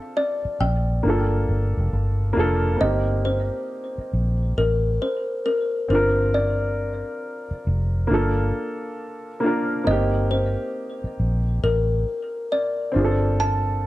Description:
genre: lo-fi hip hop.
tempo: 68 BPM.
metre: 4/4.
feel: swing 64% on 16ths.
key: unclear.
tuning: A4 = 439 Hz.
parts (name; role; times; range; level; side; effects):
kalimba; melody; 0.0-13.9 s; Bb4 to A5; -25 LUFS; left 1 dB; low-pass filter.
dark upright piano; accompaniment; 0.0-13.9 s; Bb3 to Bb4; -25 LUFS; equal; low-pass filter.
vintage muted fingered electric bass; bass; 0.5-13.9 s; F1 to Bb1; -22 LUFS; equal; none.
room: light reverb.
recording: dark, warm production.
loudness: -20 LUFS.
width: side -16 dB against mid.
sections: 0.0-2.8 A section; 2.8-13.9 A section.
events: none.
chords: 0.0 Bbmaj7; 1.0 Gm9; 2.8 Cm7/G; 5.9 Bb/G; 8.1 Gm9; 9.9 Cm7/G; 12.9 F69.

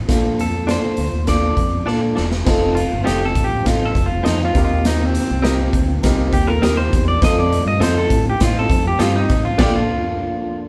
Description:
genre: uptempo 1960s-style soul.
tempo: 101 BPM.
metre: 4/4.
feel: straight.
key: F mixolydian.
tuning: A4 = 440 Hz.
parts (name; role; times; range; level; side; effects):
fingered electric bass; bass; 0.0-9.8 s; E1 to Bb2; -23 LUFS; equal; none.
dark upright piano; accompaniment; 0.1-9.8 s; Bb2 to C5; -25 LUFS; equal; none.
raw garage drum kit; drums; 0.1-9.8 s; crash cymbal, hi-hat, kick drum, snare drum; -22 LUFS; equal; none.
electric guitar through a small old amp; melody; 0.4-10.6 s; C4 to Eb5; -25 LUFS; equal; none.
direct-recorded clean electric guitar; stabs; 0.7-9.8 s; C4 to Eb5; -28 LUFS; equal; none.
mellow tonewheel organ; sustained chords; 2.5-10.7 s; Eb3 to A4; -31 LUFS; equal; none.
hollow-body jazz guitar; riff; 6.5-7.2 s; Eb4 to Bb4; -29 LUFS; equal; none.
room: moderate stone room reverb, RT60 1.3 s.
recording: band playing live in one room.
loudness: -17 LUFS.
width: mono.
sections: 0.0-2.5 A section; 2.5-10.7 B section.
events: drum fill 1.9-2.5; clean electric guitar solo 2.5-10.7; band accent 9.6-10.7.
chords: 0.1 Bbmaj7; 2.5 F7; 4.5 Cm7; 7.2 F7; 9.6 Bbmaj7.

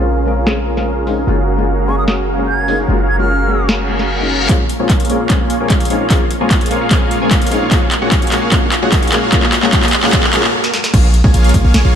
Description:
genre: future bass.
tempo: 149 BPM.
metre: 4/4.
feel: half-time.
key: Bb minor.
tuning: A4 = 442 Hz.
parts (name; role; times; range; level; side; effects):
felt-muted upright piano; accompaniment; 0.0-10.4 s; Ab3 to Bb4; -21 LUFS; left 4 dB; sidechain pumping, ping-pong delay.
ethereal airy pad; sustained chords; 0.0-12.0 s; Db3 to F5; -27 LUFS; right 1 dB; none.
dense compressed supersaw; riff; 0.0-12.0 s; Bb3 to Ab5; -18 LUFS; right 1 dB; sidechain pumping, low-pass filter, ping-pong delay.
warm 808-style bass; bass; 0.0-4.5, 10.9-12.0 s; Gb1 to Bb1; -16 LUFS; equal; tube saturation, sidechain pumping.
trap drum kit; drums; 0.5-11.8 s; crash cymbal, handclaps, hi-hat, snare drum; -17 LUFS; equal; overdrive, high-pass filter on hats, low-pass filter on hats, high-pass filter on snare, low-pass filter on snare, high-pass filter on cymbals, low-pass filter on cymbals.
concert flute; melody; 1.9-3.8 s; Db6 to Ab6; -20 LUFS; right 2 dB; sidechain pumping, ping-pong delay.
reverse cymbal, riser and noise sweep; sound effects; 3.8-10.9 s; none; -25 LUFS; equal; none.
electronic kick drum; drums; 4.5-11.6 s; none; -14 LUFS; equal; overdrive.
room: light reverb.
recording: none.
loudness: -11 LUFS.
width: side -8 dB against mid.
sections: 0.0-4.5 A section; 4.5-10.9 B section; 10.9-12.0 C section.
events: filter sweep on ambient pad 0.0-4.5; reverse cymbal 3.8-4.5; build-up 4.5-10.9; drum fill 4.5-10.5, 10.6-10.9; filter sweep on supersaw synth 4.5-10.9; noise sweep 9.3-10.9; stop 10.5-10.9; drop 10.9-12.0.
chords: 0.0 Bbm7; 1.3 Gbmaj9; 4.5 Bbm7; 7.7 Gbmaj9; 10.9 Bbm7.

